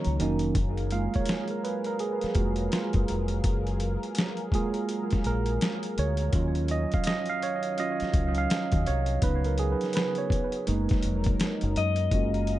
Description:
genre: R&B, neo-soul.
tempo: 83 BPM.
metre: 4/4.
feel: swing 62% on 16ths.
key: F# major.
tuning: A4 = 440 Hz.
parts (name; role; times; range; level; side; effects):
electric guitar through a small old amp; melody; 0.0-0.2, 11.8-12.6 s; C#5 to D#5; -31 LUFS; left 8 dB; tape echo.
tine electric piano; accompaniment; 0.0-12.6 s; D#3 to E#5; -29 LUFS; right 4 dB; tape echo.
warm analog pad; sustained chords; 0.0-12.6 s; C#3 to A#5; -36 LUFS; left 1 dB; chorus.
dusty soul sampler-style drum kit; drums; 0.0-12.6 s; hi-hat, kick drum, snare drum; -29 LUFS; left 1 dB; overdrive.
deep dub fingered electric bass; bass; 0.1-12.6 s; E#1 to F#2; -28 LUFS; left 1 dB; none.
room: light reverb, digital ambience.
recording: echo-heavy mix, nothing above 10.9 kHz.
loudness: -25 LUFS.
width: side -14 dB against mid.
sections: 0.6-12.1 A section.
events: break 0.0-0.6; tine electric piano solo 0.6-12.1.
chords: 0.0 F#6; 0.6 F#maj9; 6.3 D#m9; 9.2 C#7sus4; 10.7 F#6.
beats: | 0.55 1.27 2.00 2.72 | 3.44 4.17 4.89 5.61 | 6.33 7.06 7.78 8.50 | 9.23 9.95 10.67 11.39 | 12.12.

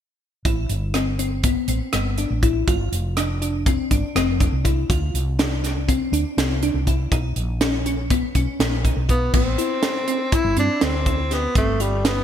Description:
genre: progressive instrumental, band music in an uneven meter.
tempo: 243 BPM (eighths).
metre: 9/8.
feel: straight.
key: unclear.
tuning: A4 = 442 Hz.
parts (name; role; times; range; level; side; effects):
woody fretless electric bass; bass; 0.4-12.2 s; F1 to G2; -24 LUFS; equal; none.
glassy wavetable pluck; arpeggios; 0.5-12.1 s; B3 to G4; -25 LUFS; left 2 dB; chorus.
crisp fusion drum kit; drums; 0.5-12.2 s; crash cymbal, hi-hat, kick drum, rim click, snare drum; -22 LUFS; right 1 dB; gated reverb.
warm tenor saxophone; melody; 9.1-12.2 s; G3 to E4; -23 LUFS; left 1 dB; ping-pong delay.
room: light reverb, studio reverb.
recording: bright 1980s-style digital production.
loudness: -19 LUFS.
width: side -9 dB against mid.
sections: 0.5-9.3 A section; 9.3-12.2 B section.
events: none.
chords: 0.5 Am9; 2.7 G7sus4; 4.9 Dm7; 7.1 Bmaj7; 9.3 Am7; 11.6 G7sus4.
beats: | 0.46 0.70 0.95 1.20 1.44 1.69 1.94 2.18 2.43 | 2.68 2.92 3.17 3.42 3.66 3.91 4.16 4.41 4.65 | 4.90 5.14 5.39 5.64 5.88 6.13 6.38 6.62 6.87 | 7.12 7.37 7.61 7.86 8.11 8.35 8.60 8.85 9.09 | 9.34 9.59 9.83 10.08 10.32 10.57 10.82 11.06 11.31 | 11.56 11.80 12.05.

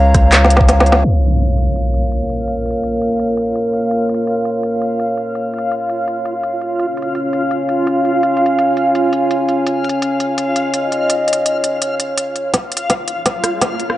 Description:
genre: half-time drum and bass.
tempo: 167 BPM.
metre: 4/4.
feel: swing 56% on 16ths, half-time.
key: Bb minor.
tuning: A4 = 438 Hz.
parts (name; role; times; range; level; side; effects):
dark analog pad; sustained chords; 0.0-14.0 s; Bb3 to Bb5; -17 LUFS; equal; chorus, sidechain pumping.
long sustained 808-style bass; bass; 0.0-1.0 s; Db2; -12 LUFS; equal; tube saturation.
electronic kick drum; drums; 0.1-0.7, 12.5-13.7 s; none; -15 LUFS; equal; high-pass filter on kick, high-pass filter on room.
organic electronic drum kit; drums; 0.1-14.0 s; handclaps, hi-hat, rim click, snare drum; -16 LUFS; equal; none.
impact and riser; sound effects; 1.0-2.5, 13.0-14.0 s; none; -18 LUFS; equal; none.
backwards swelling texture; texture; 2.5-14.0 s; F4 to F5; -21 LUFS; right 1 dB; built-in reverb.
room: moderate echo chamber reverb, RT60 1.9 s, digital ambience.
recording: dry, gritty hardware recording, low-pass filter, nothing above 10.5 kHz.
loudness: -14 LUFS.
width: side -14 dB against mid.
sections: 0.0-1.0 A section; 1.0-12.5 B section; 12.5-14.0 C section.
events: drop 0.0-1.0; drum fill 0.3-1.0, 12.5-14.0; band accent 0.9; impact 1.0-2.5; filter sweep 1.0-12.5, 12.5-14.0; build-up 12.5-14.0; filter sweep on analog synth pad 12.5-14.0; riser 13.0-14.0.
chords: 0.0 Db; 1.0 Bbm.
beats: 0.33 0.69 | 1.04 1.40 1.76 2.12 | 2.48 2.84 3.20 3.56 | 3.92 4.28 4.64 5.00 | 5.36 5.71 6.08 6.43 | 6.79 7.15 7.51 7.87 | 8.23 8.59 8.95 9.31 | 9.67 10.03 10.39 10.74 | 11.11 11.46 11.82 12.18 | 12.54 12.90 13.26 13.62.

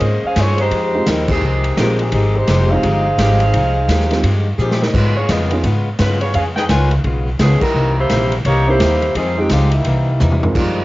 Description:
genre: jazz, big band swing.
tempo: 171 BPM.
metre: 4/4.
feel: swing 63% on 8ths.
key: F minor.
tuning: A4 = 441 Hz.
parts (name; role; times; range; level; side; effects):
mellow saxophone section; melody; 0.0-10.4 s; Eb3 to Ab5; -18 LUFS; equal; cassette tape.
picked plugged-in swing-style acoustic guitar; accompaniment; 0.0-10.8 s; C3 to C5; -24 LUFS; left 2 dB; cassette tape.
upright bass; bass; 0.0-10.8 s; F1 to Bb2; -16 LUFS; equal; none.
swinging big-band drum kit; drums; 0.0-10.7 s; crash cymbal, hi-hat, kick drum, ride cymbal, snare drum, toms; -21 LUFS; equal; none.
warm baby grand piano; accompaniment; 0.9-5.6, 8.7-10.6 s; Ab3 to Bb4; -22 LUFS; right 2 dB; cassette tape.
warm saxophone section; sustained chords; 10.6-10.8 s; Eb3 to F4; -20 LUFS; right 1 dB; cassette tape.
room: light reverb.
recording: home recording on cassette, nothing above 7.6 kHz.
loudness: -13 LUFS.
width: side -18 dB against mid.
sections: 0.0-10.6 A section.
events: band accent 1.2, 7.6; drum fill 4.6-4.9, 10.2-10.6.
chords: 0.0 Bbm9; 0.7 Fm9; 4.9 Db7; 7.8 C7#9; 9.2 Fm9; 9.9 C7#9.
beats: 0.01 0.37 | 0.72 1.07 1.42 1.78 | 2.13 2.48 2.83 3.18 | 3.53 3.89 4.24 4.59 | 4.94 5.29 5.64 6.00 | 6.35 6.70 7.05 7.40 | 7.75 8.10 8.46 8.81 | 9.16 9.51 9.86 10.21 | 10.56.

